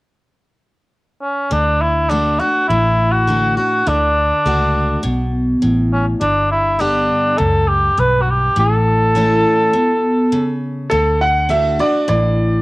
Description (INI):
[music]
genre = honky-tonk and classic country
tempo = 102 BPM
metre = 4/4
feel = straight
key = D major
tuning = A4 = 444 Hz
[part]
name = mellow cor anglais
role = melody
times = 1.2-10.6 s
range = C#4 to B4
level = -15 LUFS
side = equal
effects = cassette tape
[part]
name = picked steel-string acoustic guitar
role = accompaniment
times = 1.5-12.6 s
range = F#2 to G4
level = -20 LUFS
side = equal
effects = cassette tape
[part]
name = vintage muted fingered electric bass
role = bass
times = 1.5-12.6 s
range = G1 to D2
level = -19 LUFS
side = equal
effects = none
[part]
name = clear upright piano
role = second line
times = 10.9-12.6 s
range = A4 to F#5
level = -15 LUFS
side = right 1 dB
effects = cassette tape
[sound]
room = moderate studio reverb, RT60 0.5 s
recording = home recording on cassette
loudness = -13 LUFS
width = side -21 dB against mid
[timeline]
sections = 0.0-1.5 A section; 1.5-10.9 B section; 10.9-12.6 C section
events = break 9.7-10.9; upright piano solo 10.9-12.6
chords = 0.0 N.C.; 1.5 D; 6.2 G; 8.6 A; 10.9 D